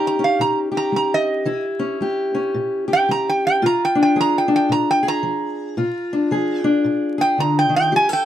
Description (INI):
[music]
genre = acoustic country blues, solo or duo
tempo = 112 BPM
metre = 4/4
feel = swing 62% on 8ths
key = Bb mixolydian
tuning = A4 = 441 Hz
[part]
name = metal-body resonator slide guitar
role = melody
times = 0.0-8.2 s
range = Eb5 to Bb5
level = -18 LUFS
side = right 2 dB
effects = none
[part]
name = fingerpicked steel-string acoustic guitar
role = accompaniment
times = 0.0-8.2 s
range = Bb2 to A4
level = -19 LUFS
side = left 2 dB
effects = none
[sound]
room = light reverb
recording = close, detailed microphones, vinyl crackle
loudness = -17 LUFS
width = side -11 dB against mid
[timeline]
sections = 0.0-8.2 A section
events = resonator guitar played with a steel bar solo 0.0-8.2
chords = 0.0 Eb7; 1.5 Edim7; 3.6 Bb7